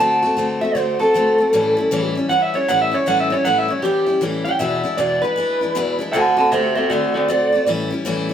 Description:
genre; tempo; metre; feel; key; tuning
rock; 156 BPM; 4/4; swing 63% on 8ths; A mixolydian; A4 = 437 Hz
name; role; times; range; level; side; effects
electric guitar through a small old amp; melody; 0.0-7.7 s; F#4 to A5; -17 LUFS; right 1 dB; none
picked steel-string acoustic guitar; accompaniment; 0.0-8.3 s; E2 to F#4; -21 LUFS; left 2 dB; none
room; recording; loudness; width
moderate stone room reverb, RT60 1.2 s; band playing live in one room; -16 LUFS; side -9 dB against mid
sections
0.0-8.3 A section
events
none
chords
0.0 D7; 1.5 A7; 4.6 E7; 6.1 D7; 7.7 A7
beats
0.38 0.76 1.14 | 1.53 1.91 2.30 2.68 | 3.06 3.45 3.83 4.22 | 4.60 4.99 5.37 5.75 | 6.14 6.52 6.91 7.29 | 7.67 8.06

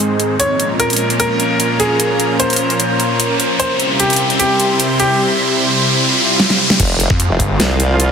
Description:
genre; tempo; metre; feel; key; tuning
heavy wobble dubstep; 150 BPM; 4/4; half-time; F minor; A4 = 441 Hz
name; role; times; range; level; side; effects
bright concert grand piano; melody; 0.0-5.2 s; G4 to Db5; -17 LUFS; equal; ping-pong delay
lush unison pad; sustained chords; 0.0-8.1 s; Ab2 to C5; -18 LUFS; equal; chorus, sidechain pumping
dubstep drum kit; drums; 0.0-8.1 s; crash cymbal, hi-hat, snare drum; -17 LUFS; right 1 dB; soft clipping on snare
riser, swell and impact; sound effects; 0.0-8.1 s; none; -19 LUFS; equal; none
ethereal airy pad; texture; 0.0-8.1 s; Ab3 to C6; -22 LUFS; right 1 dB; ensemble chorus, built-in reverb, sidechain pumping
formant-sweep wobble bass; bass; 6.8-8.1 s; F1 to C2; -15 LUFS; equal; chorus, overdrive
electronic kick drum; drums; 6.8-7.5 s; none; -18 LUFS; equal; none
snarling distorted saw bass; bass; 7.1-7.6 s; G1 to F2; -16 LUFS; equal; distortion, overdrive
clear brass ensemble; stabs; 7.9-8.1 s; F3 to F4; -18 LUFS; right 3 dB; none
room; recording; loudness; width
moderate lush hall reverb, RT60 2.3 s; dense, heavily limited modern master; -12 LUFS; side -7 dB against mid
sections
0.0-6.8 A section; 6.8-8.1 B section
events
build-up 0.0-6.8; riser 0.0-6.8; swell 6.0-6.8; drum fill 6.4-6.8; drop 6.8-8.1; impact 6.8-8.1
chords
0.4 Bbm; 3.6 C; 6.8 Fm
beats
0.00 | 0.40 0.80 1.20 1.60 | 2.00 2.40 2.80 3.20 | 3.60 4.00 4.40 4.80 | 5.20 5.60 6.00 6.40 | 6.80 7.20 7.60 8.00

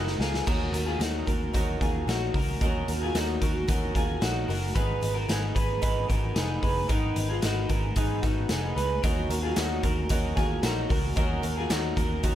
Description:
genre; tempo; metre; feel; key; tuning
jangly indie pop; 112 BPM; 4/4; straight; unclear; A4 = 440 Hz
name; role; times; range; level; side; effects
picked twelve-string acoustic guitar; accompaniment; 0.0-12.3 s; G#2 to B4; -34 LUFS; right 5 dB; none
electric guitar at the edge of break-up; arpeggios; 0.0-12.3 s; D#4 to B4; -31 LUFS; left 2 dB; wide subtle chorus, digital delay
vintage muted picked electric bass; bass; 0.0-12.3 s; E#1 to D#2; -30 LUFS; equal; none
raw garage drum kit; drums; 0.1-12.3 s; crash cymbal, hi-hat, kick drum, snare drum; -28 LUFS; equal; none
group handclap; percussion; 9.6-11.8 s; none; -40 LUFS; right 2 dB; none
room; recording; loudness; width
little or no reverb; none; -24 LUFS; side -12 dB against mid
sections
0.5-12.3 A section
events
drum fill 0.0-0.5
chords
0.5 D#m; 4.8 G#m; 9.0 D#m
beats
| 0.47 1.00 1.54 2.07 | 2.61 3.14 3.68 4.22 | 4.75 5.29 5.82 6.36 | 6.89 7.43 7.96 8.50 | 9.03 9.57 10.10 10.63 | 11.17 11.70 12.23

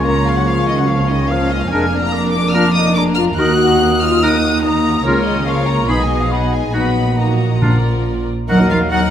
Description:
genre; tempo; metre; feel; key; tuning
quick classical-period movement for symphony orchestra; 143 BPM; 4/4; straight; Eb minor; A4 = 440 Hz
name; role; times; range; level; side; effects
rich studio violin section; melody; 0.0-9.1 s; Db5 to Gb6; -22 LUFS; left 2 dB; none
dark studio violin section; second line; 0.0-9.1 s; Ab3 to Eb5; -25 LUFS; left 3 dB; none
silver concert flute; second line; 0.0-9.0 s; F5 to Gb6; -24 LUFS; left 1 dB; none
warm clarinet; second line; 0.0-7.8 s; D4 to F4; -26 LUFS; left 1 dB; none
warm oboe; second line; 0.0-9.0 s; F4 to Db5; -25 LUFS; right 1 dB; none
dark studio viola section; accompaniment; 0.0-9.1 s; Eb3 to F4; -22 LUFS; right 3 dB; none
warm French horn section; sustained chords; 0.0-9.1 s; Db3 to Gb4; -21 LUFS; left 4 dB; none
dark studio double bass section; bass; 0.0-9.1 s; F1 to Eb2; -22 LUFS; right 2 dB; none
warm studio cello section; bass; 0.1-9.1 s; Eb2 to Gb3; -19 LUFS; right 2 dB; none
timpani; percussion; 7.6-8.2 s; Bb2; -19 LUFS; left 1 dB; none
warm trumpet section; stabs; 8.5-9.1 s; Bb4; -21 LUFS; left 1 dB; none
room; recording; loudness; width
moderate scoring stage reverb, RT60 1.5 s; none; -13 LUFS; side -10 dB against mid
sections
0.0-8.5 A section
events
none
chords
0.1 Bbm/Db; 1.7 Bb7/F; 3.4 Ebm; 5.1 Bbm/Db; 5.9 Abm/Cb; 6.7 Ebm/Bb; 7.6 Bb; 8.5 Ebm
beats
| 0.05 0.47 0.89 1.30 | 1.71 2.13 2.54 2.96 | 3.38 3.80 4.22 4.64 | 5.05 5.47 5.89 6.31 | 6.75 7.18 7.62 8.06 | 8.49 8.92

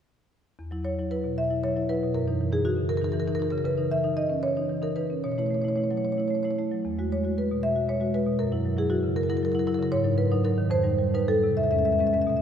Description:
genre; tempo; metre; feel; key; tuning
classical, contemporary piece for solo marimba; 69-79 BPM (dotted quarters); 6/8; rubato; E lydian; A4 = 439 Hz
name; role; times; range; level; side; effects
marimba with medium mallets; solo; 0.6-12.4 s; E2 to E5; -23 LUFS; equal; none
room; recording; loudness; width
wet cathedral reverb, RT60 4.2 s; heard from further back in the room; -23 LUFS; side -8 dB against mid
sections
0.6-12.4 A section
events
none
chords
0.6 Esus2; 2.2 F#6; 3.7 C#madd9; 5.2 B9sus4 (rootless); 6.9 Eadd9; 8.4 F#7; 9.9 G#5; 10.7 Fsus2; 11.6 E6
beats
| 0.59 1.38 | 2.15 2.92 | 3.67 4.44 | 5.24 6.05 | 6.86 7.65 | 8.41 9.18 | 9.95 10.73 | 11.57 12.40

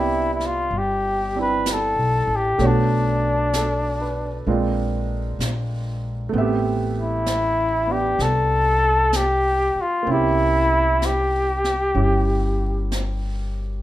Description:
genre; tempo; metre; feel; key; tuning
jazz ballad; 64 BPM; 4/4; swing 67% on 8ths; C major; A4 = 439 Hz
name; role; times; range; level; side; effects
clear flugelhorn; melody; 0.0-12.9 s; D4 to B4; -20 LUFS; left 1 dB; none
warm concert grand piano; accompaniment; 0.0-13.8 s; Ab3 to E5; -26 LUFS; right 4 dB; none
upright bass; bass; 0.0-13.8 s; G1 to C2; -24 LUFS; left 1 dB; none
jazz brush drum kit; drums; 0.4-13.8 s; brushed snare drum, hi-hat, snare drum; -32 LUFS; right 1 dB; none
room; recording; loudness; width
moderate large studio reverb, RT60 0.8 s; minimal, uncompressed stereo recording; -19 LUFS; side -14 dB against mid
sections
0.0-13.8 A section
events
none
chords
0.0 Cmaj9; 2.6 Bm7; 4.5 Bb9; 6.3 Am9; 10.1 C7b9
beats
0.71 1.65 | 2.59 3.53 4.46 5.39 | 6.33 7.26 8.19 9.13 | 10.07 11.01 11.95 12.90

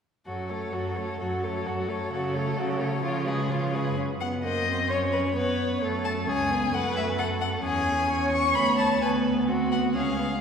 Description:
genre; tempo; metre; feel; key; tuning
quick classical-period movement for string quartet; 131 BPM; 2/4; rubato; F# minor; A4 = 441 Hz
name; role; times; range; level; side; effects
rich violin; melody; 0.3-10.4 s; A4 to C#6; -29 LUFS; left 3 dB; none
rich violin; second line; 0.3-10.4 s; E#4 to C#5; -32 LUFS; equal; none
rich viola; accompaniment; 0.3-10.3 s; E#3 to C#4; -30 LUFS; equal; none
clear cello; bass; 0.3-10.4 s; C#2 to C#3; -30 LUFS; right 2 dB; none
room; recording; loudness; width
wet concert hall reverb, RT60 2.1 s; heard from further back in the room; -24 LUFS; side -6 dB against mid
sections
0.3-4.0 A section; 4.0-10.4 B section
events
none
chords
0.3 F#m; 2.1 F#m/C#; 3.0 C#7; 4.0 F#5; 4.4 D#m6/F#; 4.9 F#sus4; 5.8 F#m; 6.3 C#5; 6.7 F#m; 7.6 C#m/E; 8.6 Bm/D; 9.5 D7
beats
| 0.27 0.74 | 1.21 1.66 | 2.12 2.57 | 3.03 3.49 | 3.97 4.44 | 4.91 5.37 | 5.82 6.28 | 6.73 7.19 | 7.64 8.10 | 8.55 9.01 | 9.47 9.95

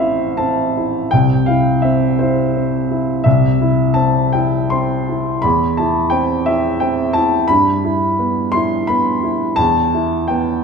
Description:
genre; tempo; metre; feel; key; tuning
classical, romantic character piece for solo piano; 72-89 BPM; 3/4; rubato; E minor from 7.5 s; A4 = 440 Hz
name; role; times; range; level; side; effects
warm baby grand piano; solo; 0.0-10.6 s; A1 to C6; -14 LUFS; equal; none
room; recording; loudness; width
moderate concert hall reverb, RT60 1.8 s; minimal, uncompressed stereo recording; -14 LUFS; side -5 dB against mid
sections
0.0-10.6 A section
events
none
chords
0.0 Am; 1.1 C; 5.4 C/E; 7.5 Em/G; 9.6 Em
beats
0.39 | 1.11 1.84 2.56 | 3.25 3.96 4.73 | 5.44 6.13 6.81 | 7.49 8.19 8.89 | 9.59 10.30

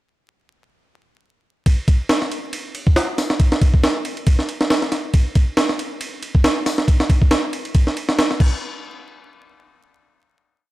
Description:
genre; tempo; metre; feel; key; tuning
breakbeat; 138 BPM; 4/4; swing 56% on 16ths; none; none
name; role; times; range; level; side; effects
breakbeat sampler-style drum kit; drums; 1.7-8.5 s; crash cymbal, hi-hat, kick drum, ride cymbal, snare drum; -16 LUFS; equal; none
room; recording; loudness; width
light reverb; dark, warm production, vinyl crackle; -16 LUFS; side -17 dB against mid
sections
1.7-8.6 drop; 8.6-10.7 final hit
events
drop 1.7-8.6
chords
none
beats
| 1.66 2.10 2.53 2.96 | 3.40 3.83 4.27 4.70 | 5.14 5.57 6.01 6.44 | 6.88 7.31 7.75 8.18

